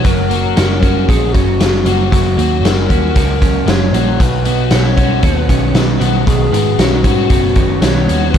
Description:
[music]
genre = rock, shoegaze and dream pop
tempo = 116 BPM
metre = 4/4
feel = straight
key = B major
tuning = A4 = 440 Hz
[part]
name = reedy FM lead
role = melody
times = 0.0-8.4 s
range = F#4 to C#5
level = -20 LUFS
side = left 1 dB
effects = chorus, digital delay
[part]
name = clean electric guitar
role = riff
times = 0.0-8.4 s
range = B2 to F#4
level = -19 LUFS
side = right 13 dB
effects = reverse reverb
[part]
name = overdriven semi-hollow guitar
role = riff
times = 0.0-8.4 s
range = B2 to F#4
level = -18 LUFS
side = left 11 dB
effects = analog chorus
[part]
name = vintage muted picked electric bass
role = bass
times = 0.0-8.4 s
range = F#1 to G#2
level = -16 LUFS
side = equal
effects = none
[part]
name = raw garage drum kit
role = drums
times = 0.0-8.4 s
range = hi-hat, kick drum, snare drum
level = -15 LUFS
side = equal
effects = none
[sound]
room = studio ambience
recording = dark, warm production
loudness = -10 LUFS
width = side -8 dB against mid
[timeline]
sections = 0.0-8.4 A section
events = none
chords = 0.0 F#; 4.2 Badd9

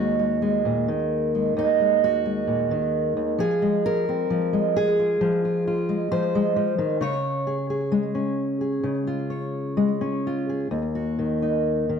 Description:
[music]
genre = folk, solo fingerstyle acoustic guitar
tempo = 66 BPM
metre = 4/4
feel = rubato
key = Eb dorian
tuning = A4 = 438 Hz
[part]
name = fingerpicked steel-string acoustic guitar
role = solo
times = 0.0-12.0 s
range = Eb2 to Db5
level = -21 LUFS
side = equal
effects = slapback echo
[sound]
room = moderate studio reverb, RT60 0.5 s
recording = dark, warm production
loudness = -21 LUFS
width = side -6 dB against mid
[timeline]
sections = 0.0-10.7 A section; 10.7-12.0 B section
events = none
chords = 0.0 Ebm; 3.4 Fm; 7.0 Db; 10.7 Ebm

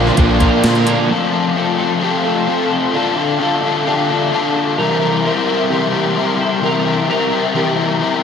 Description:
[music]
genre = rock, shoegaze and dream pop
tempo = 130 BPM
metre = 4/4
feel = straight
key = unclear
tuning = A4 = 440 Hz
[part]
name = glassy FM pad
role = sustained chords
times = 0.0-8.2 s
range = A4 to D6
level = -23 LUFS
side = right 1 dB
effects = ensemble chorus, built-in reverb
[part]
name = electric guitar through a small old amp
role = arpeggios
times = 0.0-7.8 s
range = G4 to Bb4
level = -22 LUFS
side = right 2 dB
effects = analog chorus, analog delay
[part]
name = biting overdriven guitar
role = riff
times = 0.0-1.1 s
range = Bb2 to Bb3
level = -21 LUFS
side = equal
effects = none
[part]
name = crunchy overdriven guitar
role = riff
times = 0.0-1.1 s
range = Bb2 to D4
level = -19 LUFS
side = right 8 dB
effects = reverse reverb
[part]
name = overdriven semi-hollow guitar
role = riff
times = 0.0-8.2 s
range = C3 to Bb4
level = -16 LUFS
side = left 4 dB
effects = analog chorus
[part]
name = fuzz fingered electric bass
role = bass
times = 0.0-0.9 s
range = Bb1 to Bb2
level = -18 LUFS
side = right 1 dB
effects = overdrive
[part]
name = gated 80s digital drum machine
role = drums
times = 0.1-1.0 s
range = hi-hat, kick drum, snare drum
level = -17 LUFS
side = equal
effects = gated reverb, gated reverb snare
[sound]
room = wet lush hall reverb, RT60 1.6 s, digital ambience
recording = dreamy mix soaked in reverb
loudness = -13 LUFS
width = side -7 dB against mid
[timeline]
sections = 0.0-1.1 A section; 1.1-8.2 B section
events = none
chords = 0.0 Bbadd9; 1.1 Fadd9; 2.9 Dmadd9; 4.8 C7

